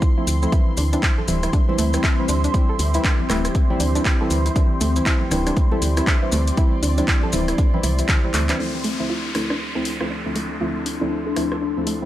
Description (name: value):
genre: deep house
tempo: 119 BPM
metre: 4/4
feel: swing 61% on 16ths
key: D minor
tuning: A4 = 438 Hz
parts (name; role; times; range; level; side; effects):
- deep mellow chord stab; stabs; 0.0-12.1 s; D2 to E4; -25 LUFS; equal; analog chorus, sidechain pumping, analog delay
- electronic kick drum; drums; 0.0-8.2 s; none; -19 LUFS; equal; overdrive
- maracas; percussion; 0.0-8.6 s; none; -32 LUFS; left 2 dB; none
- ethereal airy pad; texture; 0.0-12.1 s; C4 to C6; -28 LUFS; left 2 dB; ensemble chorus, built-in reverb, phaser, sidechain pumping
- woody FM bass; bass; 0.3-8.5 s; D1 to D2; -21 LUFS; equal; none
- punchy analog drum machine; drums; 0.3-12.0 s; handclaps, hi-hat, rim click; -26 LUFS; equal; none
- soft round pluck; arpeggios; 0.5-12.0 s; D3 to A4; -29 LUFS; right 1 dB; chorus, cassette tape, sidechain pumping, tape echo
- congas; percussion; 1.2-8.3 s; none; -34 LUFS; right 2 dB; none
- downlifter; sound effects; 8.6-12.1 s; none; -30 LUFS; left 1 dB; none
room: light reverb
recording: none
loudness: -18 LUFS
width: side -13 dB against mid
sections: 0.0-8.6 A section; 8.6-12.1 B section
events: drum fill 8.3; filter sweep on synth arpeggio sound 8.6-12.1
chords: 0.0 Dm7; 0.5 C/D; 8.6 Dm7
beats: 0.02 | 0.53 1.03 1.53 2.04 | 2.54 3.05 3.55 4.05 | 4.56 5.06 5.57 6.07 | 6.58 7.08 7.58 8.09 | 8.59 9.10 9.60 10.10 | 10.61 11.11 11.62